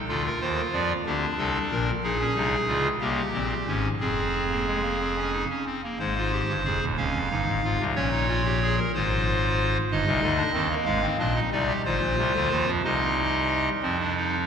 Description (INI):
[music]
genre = classical, baroque-style 3-part fugue for pipe organ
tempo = 61 BPM (dotted quarters)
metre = 6/8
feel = straight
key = F minor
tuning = A4 = 440 Hz
[part]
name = pipe organ, clarinet reed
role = solo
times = 0.1-14.5 s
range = Db1 to F5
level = -23 LUFS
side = equal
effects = none
[sound]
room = wet church reverb, RT60 3.3 s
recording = minimal, uncompressed stereo recording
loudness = -23 LUFS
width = side -7 dB against mid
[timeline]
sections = 0.0-6.0 A section; 6.0-13.8 B section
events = none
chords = 0.1 Dm; 1.1 Bb; 2.0 Bbm; 3.0 C5; 4.0 Fm; 6.0 Fm/Ab; 7.0 Db; 8.0 Bbm; 8.9 Fm/Ab; 9.9 Cm/G; 10.9 Ab; 11.9 Fm/Ab; 12.8 Cm; 13.8 F5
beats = | 0.08 1.05 | 2.02 3.00 | 4.00 5.00 | 6.01 6.99 | 7.96 8.93 | 9.90 10.87 | 11.85 12.84 | 13.83